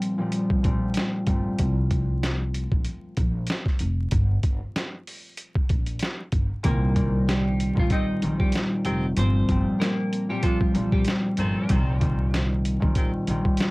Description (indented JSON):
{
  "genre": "hip hop, boom-bap hip-hop",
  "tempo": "95 BPM",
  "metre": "4/4",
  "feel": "swing 54% on 16ths",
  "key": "G minor",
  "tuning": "A4 = 437 Hz",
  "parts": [
    { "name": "concert harp", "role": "accompaniment", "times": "0.0-1.6, 6.6-13.7 s", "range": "Bb2 to C4", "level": "-26 LUFS", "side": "equal", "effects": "high-pass filter, low-pass filter, cassette tape" },
    { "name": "trip hop sampler-style drum kit", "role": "drums", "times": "0.0-13.7 s", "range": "hi-hat, kick drum, snare drum", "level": "-25 LUFS", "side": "equal", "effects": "cassette tape" },
    { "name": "upright bass", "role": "bass", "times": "0.6-13.6 s", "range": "F1 to C2", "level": "-26 LUFS", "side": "equal", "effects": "none" },
    { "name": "semi-hollow electric guitar", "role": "melody", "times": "6.6-11.1 s", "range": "F3 to Eb5", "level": "-30 LUFS", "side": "equal", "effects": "wide subtle chorus, high-pass filter, low-pass filter, cassette tape" },
    { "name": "bright saxophone section", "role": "stabs", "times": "7.9-13.1 s", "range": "Eb3 to A4", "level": "-34 LUFS", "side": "equal", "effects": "high-pass filter, low-pass filter, cassette tape, analog delay" }
  ],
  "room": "little or no reverb",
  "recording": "home recording on cassette, vinyl crackle",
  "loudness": "-22 LUFS",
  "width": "side -24 dB against mid",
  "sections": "0.0-6.6 A section; 6.6-13.7 B section",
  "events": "none",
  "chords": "0.0 Gm11; 1.6 Fsus4 (rootless); 4.1 Gm; 6.6 Cm7; 9.2 Gm11; 11.7 Cm7"
}